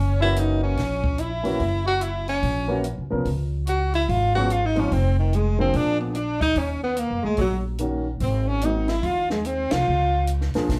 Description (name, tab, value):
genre	jazz, small-group swing and bop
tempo	145 BPM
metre	4/4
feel	swing 64% on 8ths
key	unclear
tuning	A4 = 445 Hz
part	breathy tenor saxophone	melody	0.0-10.3 s	Eb3 to Gb4	-27 LUFS	equal	none
part	warm tenor saxophone	second line	0.0-10.3 s	Eb3 to Gb4	-34 LUFS	equal	none
part	upright bass	bass	0.0-10.8 s	F1 to Gb2	-27 LUFS	equal	none
part	warm concert grand piano	accompaniment	0.2-10.7 s	Eb3 to Bb4	-29 LUFS	equal	none
part	compact cocktail drum kit	drums	0.4-10.8 s	hi-hat, kick drum, ride cymbal, snare drum	-33 LUFS	equal	none
room	wet club reverb, RT60 0.7 s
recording	heard from further back in the room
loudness	-23 LUFS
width	mono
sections	0.0-10.8 A section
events	band accent 9.7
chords	0.0 Gb7; 3.3 Db; 4.9 Fm; 5.7 Bb7; 6.6 Ebm7; 8.2 Ab7; 9.9 Db